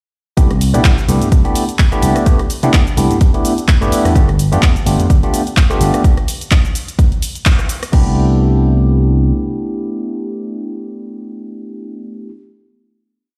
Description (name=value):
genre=filtered disco house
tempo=127 BPM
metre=4/4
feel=swing 56% on 16ths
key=C major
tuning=A4 = 441 Hz
part: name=barky tine electric piano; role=accompaniment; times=0.4-12.3 s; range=A3 to G4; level=-20 LUFS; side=equal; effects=phaser, sidechain pumping
part: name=vintage slap bass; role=bass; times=0.4-9.3 s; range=G1 to C3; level=-16 LUFS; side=equal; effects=sidechain pumping
part: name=electronic kick drum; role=drums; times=0.4-8.0 s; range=none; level=-14 LUFS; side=equal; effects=overdrive, small room reverb
part: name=punchy analog drum machine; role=drums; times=0.4-8.0 s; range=crash cymbal, handclaps, hi-hat, rim click, shaker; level=-24 LUFS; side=equal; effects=overdrive, sidechain pumping on hats, small room reverb, sidechain pumping on perc, sidechain pumping on cymbals
room=digital ambience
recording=played on a big sound system in a bare room, stone room reverb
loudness=-14 LUFS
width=mono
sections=0.4-7.9 drop; 7.9-11.7 final chord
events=drop 0.4-7.9; band accent 7.5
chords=0.4 Cmaj13; 4.2 G9; 7.9 Cmaj13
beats=| 0.38 0.85 1.32 1.79 | 2.26 2.74 3.21 3.68 | 4.15 4.63 5.10 5.57 | 6.04 6.52 6.99 7.46 | 7.93 8.41 8.88 9.35 | 9.82 10.30 10.77 11.24